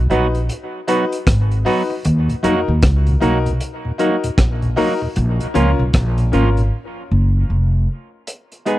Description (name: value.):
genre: dub reggae.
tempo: 77 BPM.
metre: 4/4.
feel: swing 62% on 16ths.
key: unclear.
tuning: A4 = 442 Hz.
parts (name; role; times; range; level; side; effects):
upright bass; bass; 0.0-7.9 s; E#1 to E#2; -16 LUFS; equal; none.
semi-hollow electric guitar; accompaniment; 0.1-8.8 s; E#3 to G#4; -23 LUFS; right 5 dB; dub echo.
warm baby grand piano; stabs; 0.1-8.8 s; C#4 to B4; -22 LUFS; left 4 dB; dub echo.
crunchy breakbeat drum kit; drums; 0.1-8.8 s; hi-hat, kick drum, rim click; -19 LUFS; equal; none.
mellow tonewheel organ; accompaniment; 2.3-6.6 s; D#2 to D#4; -23 LUFS; left 1 dB; chorus vibrato, stopped rotary speaker.
room: small room ambience.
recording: dry, close 1970s-style studio recording.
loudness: -15 LUFS.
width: side -15 dB against mid.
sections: 0.0-8.3 A section.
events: break 0.0-2.0, 6.7-8.3.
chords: 0.0 B; 2.0 D#m; 5.2 A#m; 8.3 G#m.